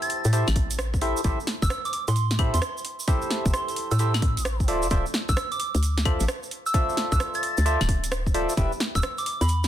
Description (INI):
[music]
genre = UK garage, two-step garage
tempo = 131 BPM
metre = 4/4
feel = swing 65% on 16ths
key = A minor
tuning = A4 = 440 Hz
[part]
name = soft synth bell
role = melody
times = 0.0-9.6 s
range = B5 to A6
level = -30 LUFS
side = right 1 dB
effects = chorus, phaser, tape echo
[part]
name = percussive organ stab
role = stabs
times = 0.0-8.7 s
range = E4 to E5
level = -29 LUFS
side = equal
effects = chorus, tape echo
[part]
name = garage drum kit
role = drums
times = 0.0-9.7 s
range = claves, hi-hat, rim click, snare drum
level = -30 LUFS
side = right 1 dB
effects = overdrive
[part]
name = egg shaker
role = percussion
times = 0.0-9.7 s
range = none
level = -37 LUFS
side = right 4 dB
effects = none
[part]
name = hollow knocking FM bass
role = bass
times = 0.3-9.7 s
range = D1 to A2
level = -24 LUFS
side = equal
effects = tube saturation, sidechain pumping
[part]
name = electronic kick drum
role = drums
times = 0.6-9.0 s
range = none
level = -26 LUFS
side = equal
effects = none
[sound]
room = little or no reverb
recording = dense, heavily limited modern master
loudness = -22 LUFS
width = side -11 dB against mid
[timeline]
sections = 0.0-9.7 A section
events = none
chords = 0.0 Am7; 4.7 Dm9; 8.6 Em7